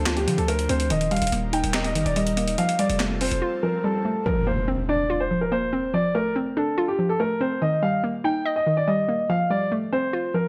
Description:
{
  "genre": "hip hop, trap",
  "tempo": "143 BPM",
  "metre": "4/4",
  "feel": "half-time",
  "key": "Bb major",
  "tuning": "A4 = 440 Hz",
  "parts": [
    { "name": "dark concert grand piano", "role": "melody", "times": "0.0-10.5 s", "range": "G4 to G5", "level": "-27 LUFS", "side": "equal", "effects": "low-pass filter" },
    { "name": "hollow square pluck", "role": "accompaniment", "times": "0.0-10.5 s", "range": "Eb3 to Eb5", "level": "-27 LUFS", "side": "equal", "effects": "chorus, low-pass filter" },
    { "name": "airy breathy pad", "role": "sustained chords", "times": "0.0-4.2 s", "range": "F3 to C5", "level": "-37 LUFS", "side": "equal", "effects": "chorus" },
    { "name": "distorted 808-style bass", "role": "bass", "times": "0.0-3.4 s", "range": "Eb1 to D3", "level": "-30 LUFS", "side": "equal", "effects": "distortion" },
    { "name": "breakbeat sampler-style drum kit", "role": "drums", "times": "0.1-3.4 s", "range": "handclaps, hi-hat, snare drum", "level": "-31 LUFS", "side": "equal", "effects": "none" },
    { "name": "swell and impact", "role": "sound effects", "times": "3.6-5.9 s", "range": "none", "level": "-34 LUFS", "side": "equal", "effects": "none" }
  ],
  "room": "light reverb",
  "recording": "none",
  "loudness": "-23 LUFS",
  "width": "mono",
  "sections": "0.0-4.3 A section; 4.3-10.5 B section",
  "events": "drums muted 3.4-4.3; impact 4.3-5.9",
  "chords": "0.0 Dm7; 0.9 Eb; 2.6 Fadd9; 4.3 Bbadd9; 5.9 Dm7; 7.6 Eb; 9.3 Fadd9"
}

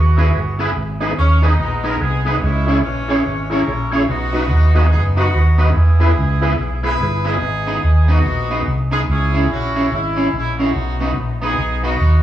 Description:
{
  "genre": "ska",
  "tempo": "144 BPM",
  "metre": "4/4",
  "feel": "swing 60% on 8ths",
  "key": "G# minor",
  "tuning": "A4 = 442 Hz",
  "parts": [
    { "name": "warm horn section", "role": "melody", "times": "0.0-12.2 s", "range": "E3 to B4", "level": "-22 LUFS", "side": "equal", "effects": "none" },
    { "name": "fingered electric bass", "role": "bass", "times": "0.0-12.2 s", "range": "F#1 to E2", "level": "-16 LUFS", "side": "equal", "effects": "tube saturation" },
    { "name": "electric guitar at the edge of break-up", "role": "accompaniment", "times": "0.2-11.9 s", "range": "B3 to C#5", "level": "-22 LUFS", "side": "right 1 dB", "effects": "spring reverb, tape echo" },
    { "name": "overdriven tonewheel organ", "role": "stabs", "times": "0.2-7.4 s", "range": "D#4 to C#5", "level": "-24 LUFS", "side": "equal", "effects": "chorus vibrato, fast rotary speaker" }
  ],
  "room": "moderate studio reverb, RT60 0.9 s",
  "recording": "band playing live in one room, small room ambience",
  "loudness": "-14 LUFS",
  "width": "side -12 dB against mid",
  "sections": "0.0-7.4 A section; 7.4-12.2 A section",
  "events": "none",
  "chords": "0.0 E; 0.8 G#m; 2.4 C#m; 4.1 B; 5.8 E; 7.4 G#m; 9.1 C#m; 10.8 B"
}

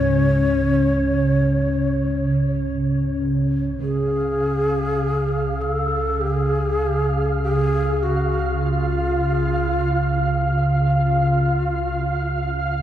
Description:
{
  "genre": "dark ambient drone",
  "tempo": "free time",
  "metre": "none",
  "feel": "none",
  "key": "C# major",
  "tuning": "A4 = 440 Hz",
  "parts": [
    { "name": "breathy mellow long shakuhachi", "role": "melody", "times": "0.0-12.8 s", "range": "E#4 to C#5", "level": "-24 LUFS", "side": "equal", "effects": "analog delay" },
    { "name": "sweeping resonant pad", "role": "sustained chords", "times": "0.0-12.8 s", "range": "C#3 to C#4", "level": "-22 LUFS", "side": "equal", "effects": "chorus" },
    { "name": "gamelan-type bossed gongs", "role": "arpeggios", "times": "0.0-11.0 s", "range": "G#2 to C#4", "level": "-32 LUFS", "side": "right 1 dB", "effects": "none" },
    { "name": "deep rumbling drone", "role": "drone", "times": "0.0-12.8 s", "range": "C#2 to C#3", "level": "-25 LUFS", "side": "equal", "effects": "built-in reverb" },
    { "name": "flickering grainy texture", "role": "texture", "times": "4.2-12.8 s", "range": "E#5", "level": "-26 LUFS", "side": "right 2 dB", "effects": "built-in reverb" }
  ],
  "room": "wet lush hall reverb, RT60 2.6 s",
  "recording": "dreamy mix soaked in reverb",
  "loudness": "-18 LUFS",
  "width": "side -11 dB against mid",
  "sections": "0.0-3.8 A section; 3.8-12.8 B section",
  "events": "none",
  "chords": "0.0 C#5"
}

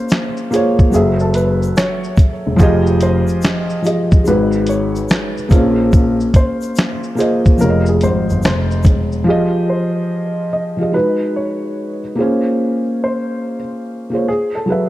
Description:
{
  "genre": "lo-fi hip hop",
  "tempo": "72 BPM",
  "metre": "4/4",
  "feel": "swing 66% on 16ths",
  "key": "F minor",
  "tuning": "A4 = 440 Hz",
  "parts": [
    { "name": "dark upright piano", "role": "melody", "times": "0.0-14.9 s", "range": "Ab4 to Eb5", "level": "-23 LUFS", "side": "equal", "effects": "low-pass filter, tape echo" },
    { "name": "felt-muted upright piano", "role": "accompaniment", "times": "0.0-14.9 s", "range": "F3 to Fb5", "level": "-17 LUFS", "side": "equal", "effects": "low-pass filter" },
    { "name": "dusty soul sampler-style drum kit", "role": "drums", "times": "0.1-9.3 s", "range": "finger snaps, hi-hat, kick drum, shaker, snare drum", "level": "-13 LUFS", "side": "equal", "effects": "none" },
    { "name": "tube shaker", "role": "percussion", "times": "0.1-9.1 s", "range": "none", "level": "-40 LUFS", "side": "left 5 dB", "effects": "none" },
    { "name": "dark baby grand piano", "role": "bass", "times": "0.9-9.2 s", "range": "Fb1 to Bb1", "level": "-17 LUFS", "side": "left 1 dB", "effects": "none" }
  ],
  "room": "light reverb, small room ambience",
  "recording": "dark, warm production",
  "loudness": "-13 LUFS",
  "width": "side -15 dB against mid",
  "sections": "0.0-9.3 A section; 9.3-14.9 B section",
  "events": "none",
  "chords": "0.0 Bbm9; 0.9 Gbm9; 2.6 Fm9; 4.3 Abm7; 5.5 Bbm9; 7.6 Fm9; 10.9 Abm7; 12.2 Bbm9; 14.3 Gbm9"
}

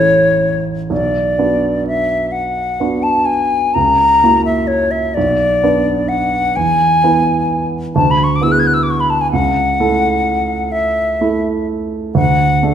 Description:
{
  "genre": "classical, romantic duo for flute and grand piano",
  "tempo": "42 BPM (dotted quarters)",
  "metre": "6/8",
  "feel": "rubato",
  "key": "A major",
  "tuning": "A4 = 437 Hz",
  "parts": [
    { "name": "bright silver concert flute", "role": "melody", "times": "0.0-12.7 s", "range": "C#5 to G#6", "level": "-14 LUFS", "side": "left 2 dB", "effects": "none" },
    { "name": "warm baby grand piano", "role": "accompaniment", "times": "0.0-12.7 s", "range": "A1 to B4", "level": "-16 LUFS", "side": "right 2 dB", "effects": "none" }
  ],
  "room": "wet recital hall reverb, RT60 1.3 s",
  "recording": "minimal, uncompressed stereo recording",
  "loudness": "-12 LUFS",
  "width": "side -9 dB against mid",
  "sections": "0.0-12.7 A section",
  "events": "none",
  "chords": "0.0 A; 0.9 Bm; 3.8 F#7/C#; 5.2 Bm; 6.6 E; 8.0 E7/D; 9.3 A/C#; 12.2 D"
}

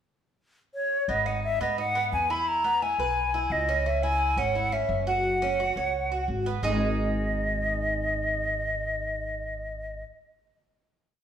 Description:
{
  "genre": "latin, Cuban son and guajira",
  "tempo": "173 BPM",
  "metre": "4/4",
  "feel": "straight",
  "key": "G# minor",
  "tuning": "A4 = 440 Hz",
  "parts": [
    { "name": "hollow concert flute", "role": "melody", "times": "0.7-10.0 s", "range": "C#5 to B5", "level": "-27 LUFS", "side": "left 1 dB", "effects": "none" },
    { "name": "Cuban tres", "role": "arpeggios", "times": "1.1-10.0 s", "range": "G#3 to C#5", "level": "-31 LUFS", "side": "right 4 dB", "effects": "none" },
    { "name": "upright bass", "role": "bass", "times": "1.1-10.0 s", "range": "F#1 to G#2", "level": "-31 LUFS", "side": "equal", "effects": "none" }
  ],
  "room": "wet large studio reverb, RT60 1.3 s",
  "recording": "band playing live in one room",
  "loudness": "-24 LUFS",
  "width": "side -9 dB against mid",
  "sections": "0.0-1.1 pickup bar; 1.1-6.6 montuno (vamp); 6.6-9.4 final chord",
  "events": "none",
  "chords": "0.0 N.C.; 1.1 G#m; 2.5 E; 3.9 C#m; 5.2 F#5; 6.6 G#5"
}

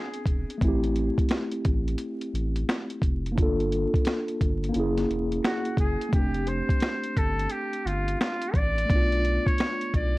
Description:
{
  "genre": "lo-fi hip hop",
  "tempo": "87 BPM",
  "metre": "4/4",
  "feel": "swing 62% on 16ths",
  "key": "F major",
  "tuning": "A4 = 441 Hz",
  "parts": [
    { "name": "trumpet with metal mute", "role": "melody", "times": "0.0-0.2, 5.5-10.2 s", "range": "F4 to D5", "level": "-30 LUFS", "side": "equal", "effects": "low-pass filter" },
    { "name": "mellow tine electric piano", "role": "accompaniment", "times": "0.0-10.2 s", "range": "A3 to A4", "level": "-29 LUFS", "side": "equal", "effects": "medium stereo tremolo, cassette tape, low-pass filter" },
    { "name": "boom bap sampler-style drum kit", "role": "drums", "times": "0.1-10.1 s", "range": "finger snaps, hi-hat, kick drum, snare drum", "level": "-26 LUFS", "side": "equal", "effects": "none" },
    { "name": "saturated sub bass", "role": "bass", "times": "0.3-10.2 s", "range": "E1 to B1", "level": "-28 LUFS", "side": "equal", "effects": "none" }
  ],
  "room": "light reverb",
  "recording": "worn, warbling old tape, cassette tape, vinyl crackle, warbly pitch drift",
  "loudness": "-24 LUFS",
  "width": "side -20 dB against mid",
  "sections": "0.0-10.2 A section",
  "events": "none",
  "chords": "0.0 E7b13; 0.6 Am7; 3.4 Gm7; 4.8 Gb9; 6.1 F69; 8.9 Bm7b5"
}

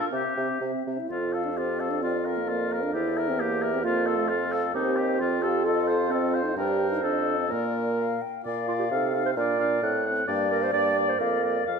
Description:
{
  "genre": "quick classical-period movement for wind quintet",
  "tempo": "131 BPM",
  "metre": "2/4",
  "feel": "rubato",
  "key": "F major, Bb major from 4.8 s",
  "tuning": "A4 = 439 Hz",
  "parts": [
    { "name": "mellow hollow silver concert flute", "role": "melody", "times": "0.0-11.8 s", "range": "C5 to G5", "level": "-32 LUFS", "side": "left 12 dB", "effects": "none" },
    { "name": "warm oboe", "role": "second line", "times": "0.0-11.8 s", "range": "Eb4 to F#5", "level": "-30 LUFS", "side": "left 4 dB", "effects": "none" },
    { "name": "mellow clarinet", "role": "accompaniment", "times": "0.0-11.7 s", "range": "C4 to D5", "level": "-30 LUFS", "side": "right 9 dB", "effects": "none" },
    { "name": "warm French horn", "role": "accompaniment", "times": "0.0-11.8 s", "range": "A3 to A4", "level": "-31 LUFS", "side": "left 1 dB", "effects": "none" },
    { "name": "warm bassoon", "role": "bass", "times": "0.1-11.8 s", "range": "Eb2 to C3", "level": "-30 LUFS", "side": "right 3 dB", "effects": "none" }
  ],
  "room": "moderate scoring stage reverb, RT60 1.6 s",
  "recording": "none",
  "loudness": "-23 LUFS",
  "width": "side -6 dB against mid",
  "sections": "0.0-1.1 A section; 1.1-8.4 B section; 8.4-11.8 A section",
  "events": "none",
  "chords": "0.1 C; 1.1 F; 2.0 Bb/F; 2.9 C7/E; 3.8 F; 4.8 Cm/Eb; 5.2 F; 5.7 F7; 6.6 Gm; 7.0 F7; 7.5 Bb; 8.9 F7/C; 9.4 Bb; 9.8 D7/A; 10.3 Gm; 11.2 Bb/F"
}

